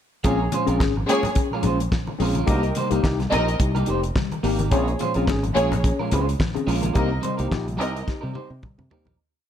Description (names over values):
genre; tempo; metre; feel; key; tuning
disco; 107 BPM; 4/4; swing 56% on 16ths; Bb dorian; A4 = 439 Hz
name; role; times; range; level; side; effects
dark studio string section; second line; 0.2-8.0 s; Bb3 to Eb5; -26 LUFS; equal; none
electric guitar at the edge of break-up; accompaniment; 0.2-9.2 s; G3 to C5; -28 LUFS; right 5 dB; none
mellow tine electric piano; accompaniment; 0.2-9.1 s; Bb2 to Ab4; -27 LUFS; left 6 dB; medium stereo tremolo
fingered electric bass; bass; 0.2-9.2 s; F1 to C3; -25 LUFS; right 1 dB; none
damped 70s drum kit; drums; 0.2-9.2 s; hi-hat, kick drum, snare drum, toms; -25 LUFS; equal; none
congas; percussion; 0.3-9.2 s; none; -32 LUFS; left 5 dB; none
room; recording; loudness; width
light reverb, small room ambience; dark, warm production; -20 LUFS; side -9 dB against mid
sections
0.2-9.2 groove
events
fade-out 7.0-9.2; drum fill 8.1-9.2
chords
0.2 Bbm7; 2.5 Cm7; 4.7 Bbm7; 7.0 Cm7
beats
| 0.25 0.80 1.36 1.92 | 2.48 3.04 3.60 4.16 | 4.71 5.27 5.83 6.39 | 6.95 7.51 8.07 8.63